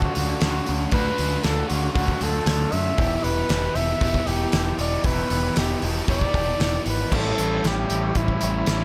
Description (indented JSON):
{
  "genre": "rock, shoegaze and dream pop",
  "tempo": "116 BPM",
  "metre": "4/4",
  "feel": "straight",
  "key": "D major",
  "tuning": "A4 = 440 Hz",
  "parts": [
    { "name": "warm flugelhorn", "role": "melody", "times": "0.0-8.8 s", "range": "E4 to E5", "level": "-29 LUFS", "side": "equal", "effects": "tape echo" },
    { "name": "overdriven electric guitar", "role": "riff", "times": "0.0-8.8 s", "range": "E2 to F#4", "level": "-33 LUFS", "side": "equal", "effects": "analog chorus" },
    { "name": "overdriven electric guitar", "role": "riff", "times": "0.0-8.8 s", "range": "A2 to G4", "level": "-35 LUFS", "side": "equal", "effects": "phaser" },
    { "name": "raw garage guitar", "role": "riff", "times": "0.0-8.8 s", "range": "A2 to G4", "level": "-33 LUFS", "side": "equal", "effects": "overdrive, reverse reverb" },
    { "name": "growling picked electric bass", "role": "bass", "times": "0.0-8.8 s", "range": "E1 to F#2", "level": "-28 LUFS", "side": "equal", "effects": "overdrive" },
    { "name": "loose indie drum kit", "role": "drums", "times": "0.0-8.8 s", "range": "crash cymbal, hi-hat, kick drum, snare drum", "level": "-28 LUFS", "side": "equal", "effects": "none" }
  ],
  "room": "light reverb, studio ambience",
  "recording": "none",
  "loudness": "-23 LUFS",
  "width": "mono",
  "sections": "0.0-7.1 A section; 7.1-8.8 B section",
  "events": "none",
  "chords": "0.0 D; 3.0 Em7; 7.1 A7"
}